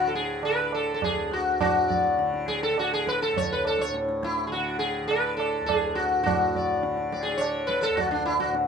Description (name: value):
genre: indian classical, Hindustani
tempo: 104 BPM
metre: 4/4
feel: straight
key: D raga yaman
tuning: A4 = 440 Hz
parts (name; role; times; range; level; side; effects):
- sitar; melody; 0.0-8.5 s; D4 to D5; -24 LUFS; left 1 dB; none
- tanpura; drone; 0.0-8.7 s; D2 to D3; -34 LUFS; equal; none
- tabla; percussion; 0.1-8.7 s; none; -31 LUFS; right 7 dB; none
room: moderate studio reverb, RT60 0.5 s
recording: minimal, uncompressed stereo recording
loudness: -23 LUFS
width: side -6 dB against mid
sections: 0.0-8.7 A section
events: speeding up 0.0-8.7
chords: none